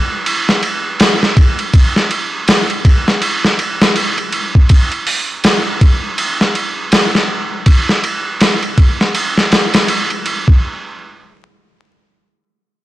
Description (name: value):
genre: trip hop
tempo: 81 BPM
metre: 4/4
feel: swing 60% on 16ths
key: none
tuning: none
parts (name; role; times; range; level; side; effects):
- boom bap sampler-style drum kit; drums; 0.3-10.6 s; hi-hat, kick drum, ride cymbal, snare drum; -11 LUFS; equal; soft clipping on snare
room: moderate echo chamber reverb, RT60 2.5 s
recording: blown-out, overdriven recording, vinyl crackle, overdrive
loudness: -11 LUFS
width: side -16 dB against mid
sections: 0.0-10.6 A section; 10.6-12.8 B section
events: none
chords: none